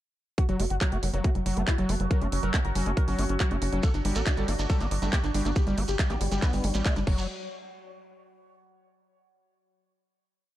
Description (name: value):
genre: psychedelic trance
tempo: 139 BPM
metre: 4/4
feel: straight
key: unclear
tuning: A4 = 445 Hz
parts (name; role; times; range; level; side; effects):
- overdriven synth lead; melody; 0.4-7.2 s; F#3 to D5; -34 LUFS; equal; distortion, phaser, sidechain pumping, dub echo
- overtone-sweeping drone; sustained chords; 1.1-7.1 s; F#3 to F#4; -38 LUFS; equal; chorus, built-in reverb, phaser, sidechain pumping
- electronic kick drum; drums; 0.4-7.2 s; none; -25 LUFS; equal; none
- techno drum kit; drums; 0.4-7.2 s; crash cymbal, handclaps, hi-hat; -35 LUFS; right 1 dB; none
- overdriven acid bass; riff; 0.5-7.3 s; F#3 to D4; -34 LUFS; equal; distortion, auto-pan, cassette tape, sidechain pumping, tape echo
- tight sequencer bass; bass; 0.5-7.3 s; F#1 to A1; -29 LUFS; equal; none
- formant-sweep wobble bass; second line; 1.0-6.9 s; A3 to D4; -44 LUFS; left 2 dB; none
- shekere; percussion; 3.8-7.3 s; none; -40 LUFS; right 4 dB; none
room: little or no reverb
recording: dark, warm production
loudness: -24 LUFS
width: side -14 dB against mid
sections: 0.4-7.3 groove; 7.3-9.0 final hit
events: none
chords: 0.4 F#5; 3.8 G5; 7.1 F#5; 7.3 N.C.